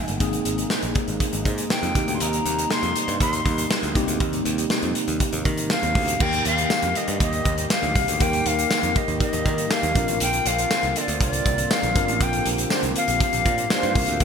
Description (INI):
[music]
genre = 1980s-style pop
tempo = 120 BPM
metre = 4/4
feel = straight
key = unclear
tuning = A4 = 440 Hz
[part]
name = mellow tenor recorder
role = melody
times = 0.0-14.2 s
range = D5 to C6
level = -25 LUFS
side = left 2 dB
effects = none
[part]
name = tine electric piano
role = accompaniment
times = 0.0-14.2 s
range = Bb3 to Bb4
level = -28 LUFS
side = equal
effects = medium stereo tremolo
[part]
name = warm analog pad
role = sustained chords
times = 0.0-14.2 s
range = C3 to G4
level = -32 LUFS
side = right 1 dB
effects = chorus
[part]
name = modern bright picked electric bass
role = bass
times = 0.0-14.2 s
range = G1 to Eb3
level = -28 LUFS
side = equal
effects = none
[part]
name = modern studio drum kit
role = drums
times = 0.1-14.2 s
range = crash cymbal, hi-hat, kick drum, snare drum, tambourine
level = -23 LUFS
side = equal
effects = gated reverb
[part]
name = mellow synth brass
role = stabs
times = 12.7-13.9 s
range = D4 to C5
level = -31 LUFS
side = right 5 dB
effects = chorus, ping-pong delay
[sound]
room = moderate lush hall reverb, RT60 2.5 s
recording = bright 1980s-style digital production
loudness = -20 LUFS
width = side -6 dB against mid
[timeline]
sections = 0.0-6.2 A section; 6.2-14.2 B section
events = band accent 12.2-14.2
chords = 0.0 Abadd9; 2.0 Eb6; 10.0 Bbadd9